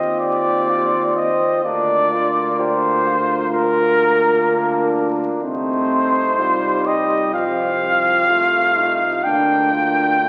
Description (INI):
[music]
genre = classical, brass quintet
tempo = 63 BPM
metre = 4/4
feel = straight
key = Bb major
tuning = A4 = 440 Hz
[part]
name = mellow trumpet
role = melody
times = 0.0-10.3 s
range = Bb4 to G5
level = -20 LUFS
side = equal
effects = none
[part]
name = mellow flugelhorn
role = second line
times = 0.0-10.3 s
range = C4 to G4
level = -28 LUFS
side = equal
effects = none
[part]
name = brilliant trombone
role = accompaniment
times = 0.0-10.3 s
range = F3 to C4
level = -28 LUFS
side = equal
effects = none
[part]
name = mellow French horn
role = accompaniment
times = 0.0-10.3 s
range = C4 to F4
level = -27 LUFS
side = equal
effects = none
[part]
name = warm tuba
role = bass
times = 0.0-10.3 s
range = C2 to Eb2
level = -30 LUFS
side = equal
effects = none
[sound]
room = wet recital hall reverb, RT60 1.8 s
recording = very old 78 rpm record, vinyl crackle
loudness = -18 LUFS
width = mono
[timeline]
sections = 0.0-10.3 A section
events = none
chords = 0.0 F7(no3)/Eb; 1.6 Bb/D; 5.4 F7/C; 9.2 Bb/D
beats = 0.69 | 1.65 2.60 3.54 4.49 | 5.43 6.39 7.34 8.29 | 9.24 10.20